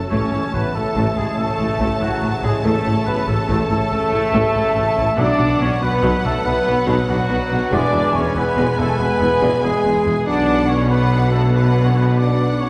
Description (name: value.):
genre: cinematic.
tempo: 94 BPM (dotted quarters).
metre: 12/8.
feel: straight.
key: unclear.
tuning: A4 = 440 Hz.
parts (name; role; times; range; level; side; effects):
warm symphonic violin section; melody; 0.0-12.7 s; F#5 to A5; -31 LUFS; equal; none.
mellow hollow concert flute; second line; 0.0-12.7 s; F#5 to D6; -31 LUFS; equal; none.
mellow oboe; second line; 0.0-12.7 s; F#4 to D5; -30 LUFS; equal; none.
warm symphonic violin section; second line; 0.0-12.7 s; B4 to C#5; -34 LUFS; equal; none.
mellow French horn section; sustained chords; 0.0-12.7 s; F#3 to D4; -25 LUFS; equal; none.
warm trombone section; sustained chords; 0.0-12.7 s; B2 to G#3; -32 LUFS; equal; none.
concert harp; arpeggios; 0.0-12.7 s; F#2 to G#5; -32 LUFS; equal; none.
mellow trumpet section; stabs; 0.0-12.7 s; F#4 to D5; -29 LUFS; equal; none.
warm symphonic viola section; accompaniment; 0.1-12.7 s; F#3 to E4; -32 LUFS; equal; none.
clear symphonic double bass section; bass; 0.1-12.7 s; E1 to B1; -26 LUFS; equal; none.
mellow tuba; bass; 0.1-12.7 s; E1 to B1; -26 LUFS; equal; none.
rich symphonic cello section; bass; 0.1-12.7 s; E2 to B2; -27 LUFS; equal; none.
room: wet scoring stage reverb, RT60 1.8 s.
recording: heard from further back in the room.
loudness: -18 LUFS.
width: mono.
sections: 0.0-12.7 A section.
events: none.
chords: 0.1 A; 5.2 Bm; 7.7 E; 10.3 Bm.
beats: | 0.12 0.75 1.38 2.02 | 2.65 3.29 3.92 4.55 | 5.18 5.82 6.45 7.09 | 7.72 8.36 8.99 9.63 | 10.27 10.90 11.54 12.18.